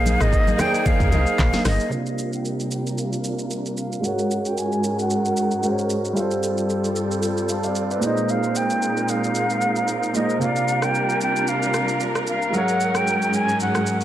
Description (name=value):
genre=amapiano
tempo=113 BPM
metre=4/4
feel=swing 55% on 16ths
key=C minor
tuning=A4 = 440 Hz
part: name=breathy jazz flute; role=melody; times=0.0-14.0 s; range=Eb5 to Ab5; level=-24 LUFS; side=equal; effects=low-pass filter, analog delay
part: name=bright concert grand piano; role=accompaniment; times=0.0-14.0 s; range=Bb2 to A5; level=-25 LUFS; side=right 1 dB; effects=low-pass filter
part: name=bright studio string section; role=sustained chords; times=0.0-14.0 s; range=G2 to Bb4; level=-25 LUFS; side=equal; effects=sidechain pumping, low-pass filter
part: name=deep log drum bass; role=bass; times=0.0-1.8 s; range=G1 to C2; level=-21 LUFS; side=equal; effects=none
part: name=afro-pop drum kit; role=drums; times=0.1-14.0 s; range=handclaps, hi-hat, kick drum, rim click, shaker, snare drum, toms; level=-27 LUFS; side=equal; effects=vintage 12-bit sampler grit
part: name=congas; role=percussion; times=0.1-1.8 s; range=none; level=-28 LUFS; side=left 2 dB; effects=none
room=moderate plate reverb, RT60 1.5 s, studio ambience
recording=dreamy mix soaked in reverb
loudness=-19 LUFS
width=side -12 dB against mid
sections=0.0-1.9 A section; 1.9-14.0 B section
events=drop 0.0-1.9; filter sweep 1.9-14.0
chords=0.0 Bb9sus4; 1.9 C9sus4; 4.0 Ab9sus4; 6.2 G9sus4; 8.0 Bb9sus4; 10.4 C9sus4; 12.5 Ab9sus4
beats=0.33 0.86 1.39 | 1.92 2.45 2.98 3.51 | 4.04 4.57 5.11 5.64 | 6.17 6.70 7.23 7.76 | 8.29 8.82 9.35 9.88 | 10.41 10.95 11.48 12.01 | 12.54 13.07 13.60